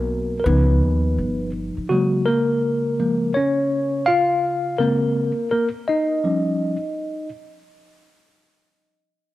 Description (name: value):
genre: hip hop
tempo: 83 BPM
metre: 4/4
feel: swing 62% on 16ths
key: Eb minor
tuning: A4 = 440 Hz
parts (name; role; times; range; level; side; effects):
- mellow tine electric piano; accompaniment; 0.0-7.3 s; Db3 to F5; -19 LUFS; left 1 dB; medium stereo tremolo
- upright bass; bass; 0.0-1.8 s; G1 to Eb2; -20 LUFS; equal; none
room: light reverb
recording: none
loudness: -18 LUFS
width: side -15 dB against mid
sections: 0.0-7.7 A section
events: tine electric piano solo 0.0-7.7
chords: 0.5 Db7; 1.9 Gbmaj7; 4.8 Bbm7; 6.2 Eb7